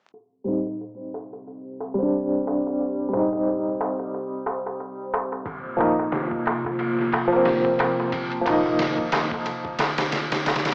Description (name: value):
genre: trip hop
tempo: 90 BPM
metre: 4/4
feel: swing 57% on 16ths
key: C minor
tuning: A4 = 441 Hz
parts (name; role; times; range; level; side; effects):
- dark analog pad; sustained chords; 1.2-10.7 s; C3 to C5; -33 LUFS; equal; chorus
- darbuka; percussion; 0.1-10.7 s; none; -32 LUFS; equal; none
- warm upright piano; accompaniment; 0.4-10.7 s; F3 to Eb4; -27 LUFS; equal; tremolo, low-pass filter, tape echo
- trip hop sampler-style drum kit; drums; 5.5-10.7 s; hi-hat, kick drum, ride cymbal, snare drum; -30 LUFS; equal; overdrive
room: light reverb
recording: dry, gritty hardware recording, vinyl crackle, low-pass filter, small speaker sound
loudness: -24 LUFS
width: mono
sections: 0.1-10.7 A section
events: filter sweep on upright piano 0.1-10.7; filter sweep on analog synth pad 0.1-10.7; filter sweep 0.1-10.7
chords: 0.1 Cm; 5.5 Ebsus2/C